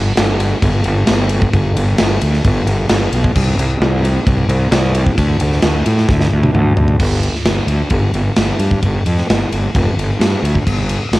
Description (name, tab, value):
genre	hard rock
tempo	132 BPM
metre	4/4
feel	straight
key	unclear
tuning	A4 = 440 Hz
part	fuzz fingered electric bass	bass	0.0-11.2 s	F1 to A2	-15 LUFS	equal	overdrive
part	big rock drum kit	drums	0.2-11.2 s	crash cymbal, kick drum, ride cymbal, snare drum, toms	-16 LUFS	equal	cassette tape
room	light reverb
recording	home recording on cassette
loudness	-12 LUFS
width	side -18 dB against mid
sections	0.0-7.0 A section; 7.0-11.2 B section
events	drum fill 6.1-7.0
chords	none